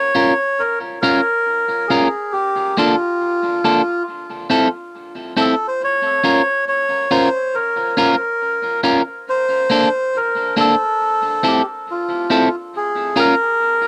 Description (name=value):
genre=reggae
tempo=69 BPM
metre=4/4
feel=swing 63% on 16ths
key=unclear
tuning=A4 = 439 Hz
part: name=melodica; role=melody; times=0.0-13.9 s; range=F4 to Db5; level=-20 LUFS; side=equal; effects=tape echo
part: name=electric guitar at the edge of break-up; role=accompaniment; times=0.1-13.3 s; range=Bb3 to Bb4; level=-21 LUFS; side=equal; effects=tape echo
room=light reverb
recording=dry, close 1970s-style studio recording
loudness=-18 LUFS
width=mono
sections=0.0-12.7 A section; 12.7-13.9 B section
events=none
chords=0.0 Db6; 2.3 Bbmaj7; 4.1 C6; 5.8 Db6; 9.3 Bbmaj7; 11.0 C6; 12.7 Db6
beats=0.59 1.46 | 2.33 3.19 4.06 4.93 | 5.80 6.67 7.54 8.40 | 9.27 10.14 11.01 11.87 | 12.74 13.60